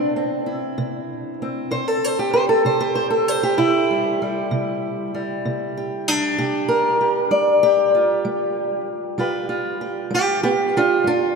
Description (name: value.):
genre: acoustic country blues, solo or duo.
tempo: 64 BPM (dotted quarters).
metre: 12/8.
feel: straight.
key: unclear.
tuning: A4 = 444 Hz.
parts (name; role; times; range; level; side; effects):
fingerpicked acoustic archtop guitar; solo; 0.0-11.4 s; G2 to D5; -18 LUFS; equal; none.
room: wet cathedral reverb, RT60 5.1 s.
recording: in a vast, echoing space.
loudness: -18 LUFS.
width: side -4 dB against mid.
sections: 0.0-11.4 A section.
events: none.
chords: 0.0 C; 7.3 G7.